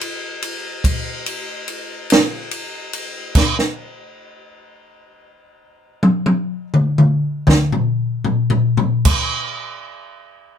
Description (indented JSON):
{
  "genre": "blues",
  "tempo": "36-48 BPM (dotted quarters)",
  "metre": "12/8",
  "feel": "straight",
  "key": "none",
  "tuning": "none",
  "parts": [
    { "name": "compact cocktail drum kit", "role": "drums", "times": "0.0-9.3 s", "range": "crash cymbal, kick drum, ride cymbal, snare drum, toms", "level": "-16 LUFS", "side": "left 1 dB", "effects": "none" }
  ],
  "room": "moderate studio ambience, RT60 0.5 s",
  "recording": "band playing live in one room",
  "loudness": "-16 LUFS",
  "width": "side -8 dB against mid",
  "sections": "0.0-9.1 A section; 9.1-10.6 B section",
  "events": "slowing down 1.7-9.1; drum fill 3.4-9.1",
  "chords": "none"
}